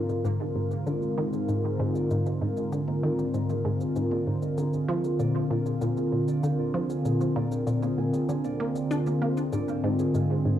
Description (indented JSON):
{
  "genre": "ambient, sequencer-driven space music",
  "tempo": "97 BPM",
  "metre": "4/4",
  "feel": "straight",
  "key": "Ab lydian",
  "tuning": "A4 = 440 Hz",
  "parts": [
    { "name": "sweeping resonant pad", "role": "sustained chords", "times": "0.0-10.6 s", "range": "Ab2 to Bb4", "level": "-26 LUFS", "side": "equal", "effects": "chorus, cassette tape" },
    { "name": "concert harp", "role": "arpeggios", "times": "0.0-10.6 s", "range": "Ab4 to Ab5", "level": "-44 LUFS", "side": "right 7 dB", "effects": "auto-pan, cassette tape, analog delay" },
    { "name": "resonant blip pluck", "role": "riff", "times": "0.0-10.6 s", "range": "Ab2 to D4", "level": "-30 LUFS", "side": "equal", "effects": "chorus, cassette tape, analog delay" },
    { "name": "electronic cabasa and toms", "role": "percussion", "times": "0.1-10.3 s", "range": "none", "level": "-44 LUFS", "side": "equal", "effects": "analog delay" }
  ],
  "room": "wet studio reverb, RT60 0.5 s",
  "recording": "home recording on cassette",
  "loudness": "-25 LUFS",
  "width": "side -11 dB against mid",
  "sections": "0.0-10.6 A section",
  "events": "fade-in on harp 0.0-10.6; fade-in on drum 0.0-10.6",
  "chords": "0.0 Ab; 4.6 Bb; 9.5 Ab"
}